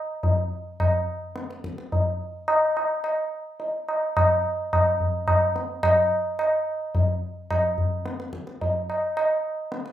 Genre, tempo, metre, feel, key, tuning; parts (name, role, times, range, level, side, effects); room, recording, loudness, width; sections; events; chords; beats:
indian classical; 107 BPM; 3/4; straight
tabla; percussion; 0.2-9.9 s; -22 LUFS; equal
moderate large studio reverb, RT60 0.9 s; band playing live in one room; -22 LUFS; side -12 dB against mid
0.0-5.8 A section; 5.8-9.9 B section
0.22 | 0.79 1.35 1.91 | 2.47 3.03 3.59 | 4.15 4.71 5.27 | 5.83 6.39 6.95 | 7.50 8.06 8.62 | 9.17 9.73